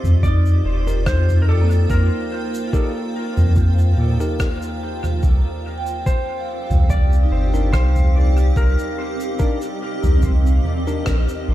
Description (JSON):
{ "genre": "ambient dub", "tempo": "72 BPM", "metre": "4/4", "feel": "swing 54% on 16ths", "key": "C minor", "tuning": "A4 = 440 Hz", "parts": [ { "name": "clean lap steel guitar", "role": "melody", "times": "0.0-11.4 s", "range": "A4 to D5", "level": "-29 LUFS", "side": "left 2 dB", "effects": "vintage 12-bit sampler grit, dub echo" }, { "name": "granular cloud pad", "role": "sustained chords", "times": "0.0-11.5 s", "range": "C4 to D6", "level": "-29 LUFS", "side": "equal", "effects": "built-in reverb" }, { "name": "warm sub bass", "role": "bass", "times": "0.0-11.5 s", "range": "F1 to Bb2", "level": "-15 LUFS", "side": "equal", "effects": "none" }, { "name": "soft-mallet drum kit", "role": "drums", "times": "0.0-11.4 s", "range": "rim click, shaker, toms", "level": "-24 LUFS", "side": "right 1 dB", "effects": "none" }, { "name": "electronic kick drum", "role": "drums", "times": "0.2-11.2 s", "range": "none", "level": "-20 LUFS", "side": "equal", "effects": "none" }, { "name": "vibraphone with medium mallets", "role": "arpeggios", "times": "0.3-11.5 s", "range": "Bb3 to G5", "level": "-29 LUFS", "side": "right 2 dB", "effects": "dub echo" }, { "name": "bell-like tine electric piano", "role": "stabs", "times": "0.9-11.1 s", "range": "D4 to Bb4", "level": "-30 LUFS", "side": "left 2 dB", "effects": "dub echo" } ], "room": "little or no reverb", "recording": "dark, warm production", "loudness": "-16 LUFS", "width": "side -14 dB against mid", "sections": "0.0-11.5 A section", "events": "band accent 11.1-11.5", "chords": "0.0 F7sus4; 5.2 Cm7" }